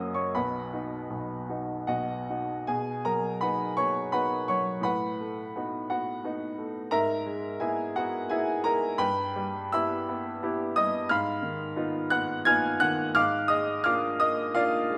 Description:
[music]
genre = classical, romantic character piece for solo piano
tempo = 74-92 BPM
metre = 3/4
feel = rubato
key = B major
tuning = A4 = 440 Hz
[part]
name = bright baby grand piano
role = solo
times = 0.0-15.0 s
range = F#1 to Ab6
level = -28 LUFS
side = equal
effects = none
[sound]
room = moderate recital hall reverb, RT60 1.4 s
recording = none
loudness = -28 LUFS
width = mono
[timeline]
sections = 0.0-2.7 A section; 2.7-15.0 B section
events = none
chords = 0.3 B; 4.8 B7/A; 6.9 E/G#; 9.0 Em/G; 11.1 Fm7b5/Ab; 13.2 Bb7/Ab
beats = | 0.34 1.10 1.88 | 2.67 3.41 4.12 | 4.84 5.55 6.23 | 6.92 7.60 8.29 | 8.97 9.72 10.42 | 11.08 11.76 12.46 | 13.15 13.85 14.55

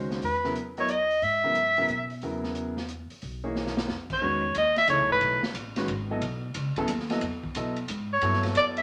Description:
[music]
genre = modal jazz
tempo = 180 BPM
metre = 3/4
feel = swing 65% on 8ths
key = E major from 4.2 s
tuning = A4 = 439 Hz
[part]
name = clear concert grand piano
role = accompaniment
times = 0.0-8.8 s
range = Db3 to D#5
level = -34 LUFS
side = equal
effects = none
[part]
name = upright bass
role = bass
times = 0.0-8.8 s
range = G#1 to B2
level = -37 LUFS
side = equal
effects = none
[part]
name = open jazz drum kit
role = drums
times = 0.1-8.8 s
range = crash cymbal, hi-hat, kick drum, ride cymbal, snare drum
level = -38 LUFS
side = equal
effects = none
[part]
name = warm soprano saxophone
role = melody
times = 0.3-2.1, 4.1-5.4, 8.1-8.8 s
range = B4 to E5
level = -26 LUFS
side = equal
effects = none
[sound]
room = wet studio reverb, RT60 0.8 s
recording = none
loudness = -27 LUFS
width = mono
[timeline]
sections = 0.0-4.2 A section; 4.2-8.8 B section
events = drum fill 3.6-3.9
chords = 0.2 Emaj9; 8.2 Gmaj9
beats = | 0.23 0.56 0.89 | 1.22 1.56 1.89 | 2.22 2.56 2.89 | 3.22 3.56 3.89 | 4.22 4.56 4.89 | 5.22 5.55 5.89 | 6.22 6.55 6.89 | 7.22 7.55 7.89 | 8.22 8.55

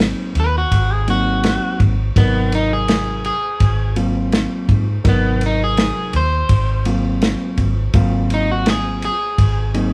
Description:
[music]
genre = straight-eighth soul blues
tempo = 83 BPM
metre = 4/4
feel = straight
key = Ab mixolydian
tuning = A4 = 440 Hz
[part]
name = overdriven reed electric piano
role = accompaniment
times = 0.0-9.9 s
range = C3 to Bb4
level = -24 LUFS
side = equal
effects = none
[part]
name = vintage muted fingered electric bass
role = bass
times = 0.0-9.9 s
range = Ab1 to Ab2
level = -22 LUFS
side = equal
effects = none
[part]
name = warm soul drum kit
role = drums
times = 0.0-9.9 s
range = kick drum, ride cymbal, snare drum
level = -21 LUFS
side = equal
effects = none
[part]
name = electric guitar at the edge of break-up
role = melody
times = 0.4-9.9 s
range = Cb4 to C5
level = -23 LUFS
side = equal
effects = none
[sound]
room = light reverb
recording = band playing live in one room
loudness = -17 LUFS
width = mono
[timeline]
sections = 0.0-9.9 A section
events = clean electric guitar solo 0.0-9.9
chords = 0.0 Ab7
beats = 0.00 0.72 1.44 | 2.16 2.89 3.61 4.33 | 5.05 5.77 6.50 7.22 | 7.94 8.66 9.38

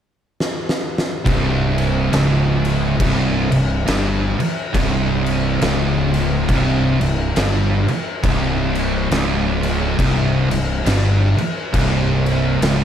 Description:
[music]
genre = stoner and doom metal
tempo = 69 BPM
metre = 4/4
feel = swing 59% on 8ths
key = unclear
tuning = A4 = 440 Hz
[part]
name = oversized low-tuned drum kit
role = drums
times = 0.4-12.8 s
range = crash cymbal, kick drum, snare drum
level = -22 LUFS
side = left 1 dB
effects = none
[part]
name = scooped high-gain guitar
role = riff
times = 1.3-12.8 s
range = C2 to G2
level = -23 LUFS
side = left 1 dB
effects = distortion
[part]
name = thick fuzz guitar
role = riff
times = 1.3-12.8 s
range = C2 to G2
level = -23 LUFS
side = left 5 dB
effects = distortion
[part]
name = thick fuzz guitar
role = riff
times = 1.3-12.8 s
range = C2 to G2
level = -21 LUFS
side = right 6 dB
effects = distortion
[part]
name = fuzz fingered electric bass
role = bass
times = 1.3-12.8 s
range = C1 to G1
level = -22 LUFS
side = equal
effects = overdrive
[sound]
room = light reverb, small room ambience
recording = dark, warm production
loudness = -16 LUFS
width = side -9 dB against mid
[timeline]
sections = 0.0-1.3 A section; 1.3-12.8 B section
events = drum fill 0.4-1.3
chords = 0.0 N.C.; 1.3 C5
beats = 0.38 | 1.25 2.12 3.00 3.87 | 4.74 5.61 6.49 7.36 | 8.23 9.11 9.98 10.86 | 11.74 12.61

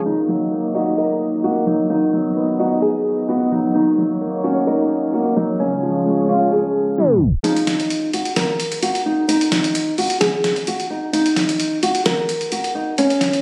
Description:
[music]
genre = hip hop, trap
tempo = 130 BPM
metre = 4/4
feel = half-time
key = Eb minor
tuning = A4 = 441 Hz
[part]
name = dark concert grand piano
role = accompaniment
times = 0.0-7.5 s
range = Db3 to Eb5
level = -22 LUFS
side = equal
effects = none
[part]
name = warm analog pad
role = sustained chords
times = 0.0-7.4 s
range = Ab3 to Eb5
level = -27 LUFS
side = equal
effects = chorus
[part]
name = nylon-string guitar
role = melody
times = 0.1-13.4 s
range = Db4 to Bb4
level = -22 LUFS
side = equal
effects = low-pass filter, digital delay
[part]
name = dusty soul sampler-style drum kit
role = drums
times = 7.4-13.4 s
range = hi-hat, snare drum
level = -25 LUFS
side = equal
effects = overdrive
[sound]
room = light reverb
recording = recorded on a phone in the room, studio reverb, compression, low-pass filter, tape stop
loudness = -19 LUFS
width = mono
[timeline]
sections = 0.1-7.4 A section; 7.4-13.4 B section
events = filter sweep 0.1-7.4; tape stop 7.0-7.4; kick muted 7.4-13.4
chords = 0.1 Ebm; 1.9 B; 3.7 Gb6; 5.6 Db; 7.4 N.C.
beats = | 0.06 0.52 0.98 1.44 | 1.90 2.36 2.83 3.29 | 3.75 4.21 4.67 5.13 | 5.59 6.06 6.52 6.98 | 7.44 7.90 8.36 8.83 | 9.29 9.75 10.21 10.67 | 11.13 11.60 12.06 12.52 | 12.98

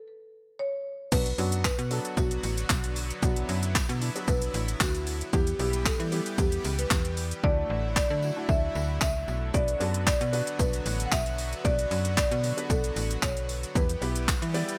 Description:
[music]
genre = dance-pop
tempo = 114 BPM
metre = 4/4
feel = straight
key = B minor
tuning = A4 = 440 Hz
[part]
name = marimba with soft mallets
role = melody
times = 0.0-14.8 s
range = F#4 to F#5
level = -35 LUFS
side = equal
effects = delay
[part]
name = warm grand piano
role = accompaniment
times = 1.1-14.8 s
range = F#3 to D5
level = -39 LUFS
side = equal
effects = lush chorus, sidechain pumping
[part]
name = supersaw pad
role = sustained chords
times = 1.1-14.8 s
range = D3 to G4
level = -40 LUFS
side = equal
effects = subtle chorus, sidechain pumping
[part]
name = slap-like FM bass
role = bass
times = 1.1-14.6 s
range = A1 to E3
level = -33 LUFS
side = equal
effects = sidechain pumping
[part]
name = deep house drum kit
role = drums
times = 1.1-14.8 s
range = crash cymbal, handclaps, hi-hat, kick drum, shaker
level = -30 LUFS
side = equal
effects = none
[part]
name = tambourine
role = percussion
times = 1.4-14.7 s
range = none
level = -46 LUFS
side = equal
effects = none
[sound]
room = light reverb, digital ambience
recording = bright 1980s-style digital production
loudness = -28 LUFS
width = mono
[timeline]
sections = 0.0-1.1 A section; 1.1-14.8 A section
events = stop 0.0-1.1; hi-hats muted 7.4-9.5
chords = 0.0 N.C.; 1.1 Bm; 5.3 Em; 7.4 Dadd9; 9.5 Bm; 13.8 Em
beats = 0.07 0.59 | 1.12 1.65 2.17 2.70 | 3.23 3.75 4.28 4.80 | 5.33 5.86 6.38 6.91 | 7.44 7.96 8.49 9.02 | 9.54 10.07 10.60 11.12 | 11.65 12.17 12.70 13.23 | 13.75 14.28

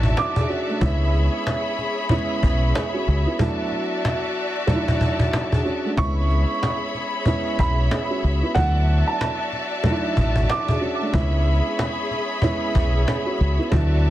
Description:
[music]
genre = hip hop, boom-bap hip-hop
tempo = 93 BPM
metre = 4/4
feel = swing 62% on 16ths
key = C# phrygian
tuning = A4 = 441 Hz
[part]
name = dark baby grand piano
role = accompaniment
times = 0.0-14.1 s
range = F#3 to G#4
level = -26 LUFS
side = right 2 dB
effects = cassette tape, high-pass filter, low-pass filter
[part]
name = rich studio string section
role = sustained chords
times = 0.0-14.1 s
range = F#4 to B5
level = -27 LUFS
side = left 2 dB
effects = high-pass filter, low-pass filter
[part]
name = deep dub fingered electric bass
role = bass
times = 0.0-14.1 s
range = A1 to D2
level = -19 LUFS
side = equal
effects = none
[part]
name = cajon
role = drums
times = 0.0-14.1 s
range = none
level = -24 LUFS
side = equal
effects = vintage 12-bit sampler grit
[part]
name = dark upright piano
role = melody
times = 0.2-0.5, 6.0-10.8 s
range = F#5 to D6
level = -27 LUFS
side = right 3 dB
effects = high-pass filter, low-pass filter, digital delay
[sound]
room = light reverb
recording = dense, heavily limited modern master, vinyl crackle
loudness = -19 LUFS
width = side -14 dB against mid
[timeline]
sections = 0.0-14.1 A section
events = none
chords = 0.0 Dadd9; 0.8 C#m7; 3.4 Dadd9; 6.0 C#m7; 8.6 Dadd9; 11.1 C#m7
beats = 0.17 | 0.81 1.46 2.10 2.75 | 3.39 4.04 4.68 5.33 | 5.97 6.62 7.26 7.91 | 8.55 9.20 9.85 10.49 | 11.14 11.78 12.43 13.07 | 13.72

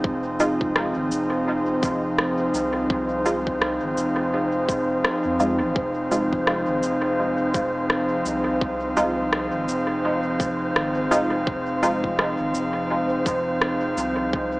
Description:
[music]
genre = ambient dub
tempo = 84 BPM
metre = 4/4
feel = swing 59% on 16ths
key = F minor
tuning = A4 = 435 Hz
[part]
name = airy breathy pad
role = sustained chords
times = 0.0-14.6 s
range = F3 to F5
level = -24 LUFS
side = equal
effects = chorus
[part]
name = warm sub bass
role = bass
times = 0.0-14.6 s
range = F1 to F2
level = -34 LUFS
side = equal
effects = tube saturation
[part]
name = electronic kick drum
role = drums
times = 0.0-14.5 s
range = none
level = -26 LUFS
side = equal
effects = none
[part]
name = wind-like tuned noise texture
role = texture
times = 0.0-14.6 s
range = C5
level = -28 LUFS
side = equal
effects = built-in reverb
[part]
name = filtered dub chord stab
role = stabs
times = 0.4-14.6 s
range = Ab3 to F4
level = -26 LUFS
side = equal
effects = chorus, dub echo
[part]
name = electronic shaker and rim click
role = drums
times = 0.4-14.1 s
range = none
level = -26 LUFS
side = equal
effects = dub echo
[sound]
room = light reverb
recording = echo-heavy mix, small speaker sound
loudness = -20 LUFS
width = side -21 dB against mid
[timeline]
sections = 0.0-14.6 A section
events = none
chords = 0.0 Fm7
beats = | 0.04 0.76 1.47 2.19 | 2.90 3.62 4.33 5.04 | 5.76 6.47 7.19 7.90 | 8.62 9.33 10.04 10.76 | 11.47 12.19 12.90 13.62 | 14.33

